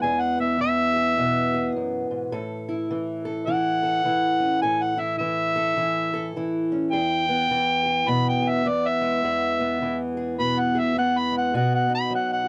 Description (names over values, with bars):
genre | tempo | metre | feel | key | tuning
acoustic country blues, solo or duo | 104 BPM | 4/4 | swing 61% on 8ths | E major | A4 = 440 Hz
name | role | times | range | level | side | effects
overdriven harmonica | melody | 0.0-12.5 s | D5 to B5 | -25 LUFS | equal | none
fingerpicked steel-string acoustic guitar | accompaniment | 0.0-12.5 s | E2 to A4 | -27 LUFS | equal | none
room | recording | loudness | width
light reverb | dry, close 1970s-style studio recording | -24 LUFS | mono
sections
0.0-12.5 A section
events
harmonica solo 0.0-12.5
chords
0.0 E; 2.3 A5; 6.9 E; 11.5 B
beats
| 0.03 0.60 1.18 1.75 | 2.33 2.90 3.48 4.05 | 4.63 5.20 5.78 6.35 | 6.93 7.50 8.08 8.65 | 9.23 9.81 10.38 10.96 | 11.54 12.11